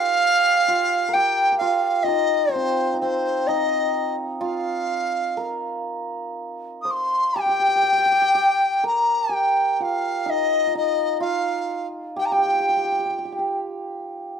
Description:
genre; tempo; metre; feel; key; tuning
chinese traditional, Chinese chamber ensemble; 63 BPM; 4/4; rubato; unclear; A4 = 440 Hz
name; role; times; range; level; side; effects
mellow hollow dizi; melody; 0.0-13.6 s; C5 to Eb6; -20 LUFS; left 1 dB; none
hammered dulcimer; second line; 0.0-14.4 s; C4 to C5; -25 LUFS; right 3 dB; plate reverb
room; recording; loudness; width
wet studio reverb, RT60 0.5 s; rough home demo mix; -19 LUFS; side -8 dB against mid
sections
0.0-14.4 A section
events
none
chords
none

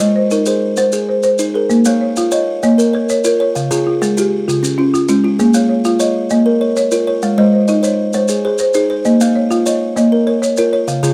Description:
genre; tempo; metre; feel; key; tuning
southern african traditional, mbira-style interlocking cycle; 131 BPM (dotted quarters); 12/8; straight; Bb dorian; A4 = 439 Hz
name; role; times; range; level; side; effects
buzzing kalimba; arpeggios; 0.0-11.1 s; Db3 to F5; -18 LUFS; equal; none
folk marimba with medium mallets; arpeggios; 0.0-11.1 s; Db3 to Eb5; -16 LUFS; equal; none
maracas; percussion; 0.3-11.1 s; none; -28 LUFS; equal; none
room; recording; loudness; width
small room ambience; dry, close 1970s-style studio recording; -14 LUFS; mono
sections
0.0-1.7 A section; 1.7-11.1 B section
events
none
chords
0.0 Ab; 1.7 Bbm; 3.5 Db; 5.4 Bbm; 7.2 Ab; 9.1 Bbm

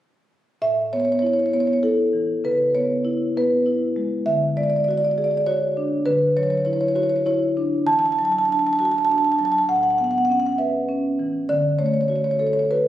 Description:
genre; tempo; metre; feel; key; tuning
classical, contemporary piece for solo marimba; 100 BPM; 3/4; rubato; A major; A4 = 440 Hz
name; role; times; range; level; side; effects
marimba with soft mallets; solo; 0.6-12.9 s; A2 to A5; -18 LUFS; equal; none
room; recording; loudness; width
moderate recital hall reverb, RT60 1.4 s; recorded on a phone in the room, studio reverb, compression; -18 LUFS; side -12 dB against mid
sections
0.6-12.9 A section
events
none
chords
0.6 Aadd9; 2.5 C#m7; 4.3 Dmaj7#11; 6.1 F#5/D; 7.9 E9sus4; 9.7 A69; 11.5 Dmaj7

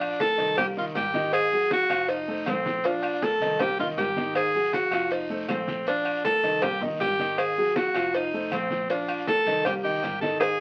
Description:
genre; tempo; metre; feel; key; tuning
latin, salsa; 159 BPM; 4/4; straight; Bb major; A4 = 440 Hz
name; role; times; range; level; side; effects
bright tenor saxophone; melody; 0.0-10.6 s; C4 to A4; -28 LUFS; equal; none
clear upright piano; accompaniment; 0.0-10.5 s; Eb3 to F5; -33 LUFS; equal; none
vintage muted fingered electric bass; bass; 0.0-10.6 s; F1 to C2; -47 LUFS; equal; none
agogo bells and timbales; percussion; 0.0-10.6 s; none; -37 LUFS; equal; none
claves; percussion; 0.0-10.6 s; none; -45 LUFS; equal; none
congas; percussion; 0.0-10.6 s; none; -37 LUFS; equal; none
cowbell and bongos; percussion; 0.2-10.6 s; none; -34 LUFS; equal; none
guiro; percussion; 0.2-10.6 s; none; -46 LUFS; equal; none
maracas; percussion; 0.2-10.6 s; none; -60 LUFS; equal; none
room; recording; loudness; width
moderate small room reverb, RT60 0.5 s; very old 78 rpm record, vinyl crackle; -26 LUFS; mono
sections
0.0-10.6 A section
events
drum fill 10.4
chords
0.0 Bbmaj7; 0.6 Cm7; 1.3 Ab5; 2.1 F7; 2.8 Bbmaj7; 3.6 Cm7; 4.4 Ab5; 5.1 F7; 5.9 Bbmaj7; 6.6 Cm7; 7.4 Ab5; 8.1 F7; 8.9 Bbmaj7; 9.7 Cm7

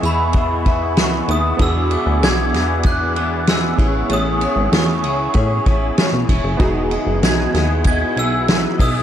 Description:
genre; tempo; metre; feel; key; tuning
indie pop, bedroom pop; 96 BPM; 4/4; straight; E major; A4 = 441 Hz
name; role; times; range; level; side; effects
glockenspiel with brass mallets; melody; 0.0-8.9 s; B5 to G#6; -24 LUFS; equal; ensemble chorus, analog delay
electric guitar through a small old amp; accompaniment; 0.0-9.0 s; C#3 to E5; -23 LUFS; left 4 dB; ensemble chorus, warbly pitch drift
warbly lo-fi synth keys; accompaniment; 0.0-9.0 s; B3 to D#5; -25 LUFS; right 3 dB; chorus, cassette tape
breathy mellow large flute ensemble; sustained chords; 0.0-9.0 s; F#4 to C#6; -27 LUFS; right 2 dB; none
plucky analog bass; bass; 0.0-9.0 s; E1 to A2; -21 LUFS; equal; none
unplugged drum kit; drums; 0.0-8.9 s; hi-hat, kick drum, ride cymbal, snare drum; -19 LUFS; equal; none
room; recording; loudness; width
light reverb; none; -14 LUFS; side -10 dB against mid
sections
0.0-9.0 A section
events
none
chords
0.0 C#m7; 1.6 E7; 3.8 Amaj7; 6.6 Emaj9

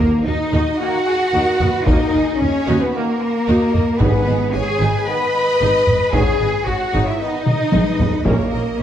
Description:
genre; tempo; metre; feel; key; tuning
cinematic, epic orchestral film score; 112 BPM; 4/4; straight; G# minor; A4 = 439 Hz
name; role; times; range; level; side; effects
warm symphonic violin section; melody; 0.0-8.8 s; A#4 to B5; -27 LUFS; left 1 dB; none
mellow hollow silver concert flute; second line; 0.0-8.8 s; A#4 to B5; -28 LUFS; left 2 dB; none
warm symphonic viola section; accompaniment; 0.0-8.8 s; C#4 to D#5; -28 LUFS; equal; none
mellow French horn section; sustained chords; 0.0-8.8 s; A#3 to B4; -22 LUFS; left 2 dB; none
rich symphonic cello section; bass; 0.0-8.8 s; A#3 to B4; -21 LUFS; right 1 dB; none
rich symphonic double bass section; bass; 0.0-8.8 s; G#1 to D#2; -22 LUFS; right 2 dB; none
timpani; percussion; 0.0-0.5, 4.0-4.8 s; G#2 to D#3; -24 LUFS; equal; none
warm symphonic violin section; second line; 0.8-8.8 s; F#4 to D#5; -29 LUFS; left 1 dB; none
warm trombone section; sustained chords; 0.8-8.4 s; C#3 to B3; -32 LUFS; right 4 dB; none
taiko ensemble; drums; 1.6-8.7 s; none; -20 LUFS; equal; none
room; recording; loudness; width
moderate scoring stage reverb, RT60 1.8 s; dark, warm production; -15 LUFS; side -10 dB against mid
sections
0.0-8.8 A section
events
drum fill 7.5-8.3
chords
0.0 D#m; 4.0 G#m; 8.3 A#dim

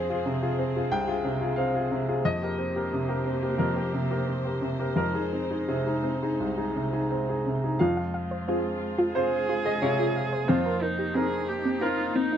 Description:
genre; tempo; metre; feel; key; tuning
neoclassical piano and strings; 87 BPM; 4/4; uneven beats, rubato; F minor; A4 = 442 Hz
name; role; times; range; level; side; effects
bright baby grand piano; accompaniment; 0.0-12.4 s; C2 to Ab5; -26 LUFS; equal; none
rich chamber string section; sustained chords; 0.0-12.4 s; Ab3 to C5; -36 LUFS; left 2 dB; none
glassy wavetable pluck; arpeggios; 7.8-12.4 s; C4 to F5; -28 LUFS; equal; chorus, slapback echo
rich viola; accompaniment; 9.1-12.4 s; Eb4 to Ab4; -30 LUFS; right 2 dB; none
room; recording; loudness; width
light reverb; dark, warm production; -25 LUFS; side -9 dB against mid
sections
0.0-7.8 A section; 7.8-12.4 A section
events
none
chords
0.0 Fm; 2.2 Cm7/F; 5.0 Fm7 (rootless); 7.8 Fm; 10.5 Cm7/F

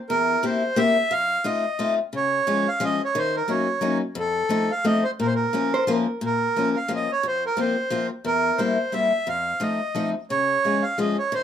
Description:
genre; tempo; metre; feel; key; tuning
musette waltz; 177 BPM; 3/4; swing 53% on 8ths; Bb minor; A4 = 439 Hz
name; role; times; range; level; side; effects
accordion; melody; 0.1-11.4 s; A4 to F5; -23 LUFS; right 2 dB; none
picked old ladder-braced acoustic guitar; accompaniment; 0.1-11.4 s; E2 to G4; -24 LUFS; left 3 dB; none
vintage hollow-body jazz guitar; second line; 5.7-6.2 s; Bb4 to C5; -24 LUFS; right 1 dB; none
room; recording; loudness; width
moderate small room reverb, RT60 0.5 s; none; -21 LUFS; side -9 dB against mid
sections
0.0-6.2 A section; 6.2-11.4 A section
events
none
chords
0.1 C7/E; 1.1 F7; 2.1 Db; 3.2 Ebm7; 4.2 F7; 5.2 Bbm; 7.2 Fsus4; 8.3 C7/E; 9.3 F7; 10.3 Db

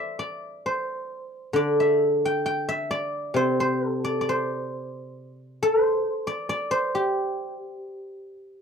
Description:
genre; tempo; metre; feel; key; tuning
chinese traditional; 66 BPM; 2/4; rubato; unclear; A4 = 439 Hz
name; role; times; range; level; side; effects
guzheng; solo; 0.0-8.6 s; C3 to G5; -24 LUFS; equal; none
room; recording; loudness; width
light reverb; dry, close 1970s-style studio recording; -23 LUFS; side -6 dB against mid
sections
0.0-8.6 A section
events
none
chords
none

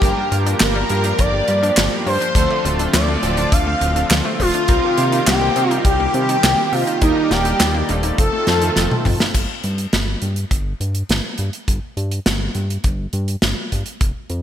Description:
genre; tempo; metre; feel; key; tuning
synthwave; 103 BPM; 4/4; straight; G minor; A4 = 440 Hz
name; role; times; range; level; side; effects
expressive portamento lead; melody; 0.0-9.0 s; Eb4 to F5; -20 LUFS; equal; lush chorus, digital delay
string machine, violins; second line; 0.0-9.0 s; Eb4 to F5; -26 LUFS; equal; ensemble chorus, digital delay
chorused pulse-width pad; sustained chords; 0.0-9.3 s; D3 to D5; -25 LUFS; left 1 dB; sidechain pumping
wide unison pluck; arpeggios; 0.0-9.3 s; F3 to Eb4; -28 LUFS; left 4 dB; digital delay
chorused polysynth; stabs; 0.0-9.3 s; G2 to Bb4; -26 LUFS; right 2 dB; vintage 12-bit sampler grit
fat analog bass; bass; 0.0-14.4 s; D1 to C3; -21 LUFS; equal; tube saturation, sidechain pumping
kick drum; drums; 0.0-14.1 s; none; -18 LUFS; equal; none
modern studio drum kit; drums; 0.0-14.4 s; crash cymbal, handclaps, hi-hat, snare drum, toms; -20 LUFS; right 1 dB; gated reverb
room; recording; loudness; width
moderate lush hall reverb, RT60 2.0 s; bright 1980s-style digital production; -15 LUFS; side -10 dB against mid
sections
0.0-9.3 A section; 9.3-14.4 B section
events
drum fill 8.5-9.3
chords
0.0 Gm7; 2.4 Dm7; 4.7 Cm7; 7.0 Ebmaj7; 8.2 F7; 9.3 N.C.

